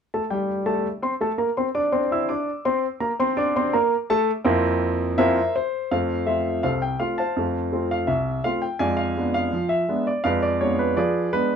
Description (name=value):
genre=ragtime piano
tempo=83 BPM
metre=2/4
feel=straight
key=F major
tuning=A4 = 440 Hz
part: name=warm grand piano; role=solo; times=0.1-11.6 s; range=C2 to E6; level=-20 LUFS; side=equal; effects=none
room=moderate studio reverb, RT60 0.5 s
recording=none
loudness=-21 LUFS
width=side -7 dB against mid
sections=0.1-5.9 A section; 5.9-11.6 B section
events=none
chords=0.1 C69/G; 3.0 C7; 5.9 F; 8.8 Fdim7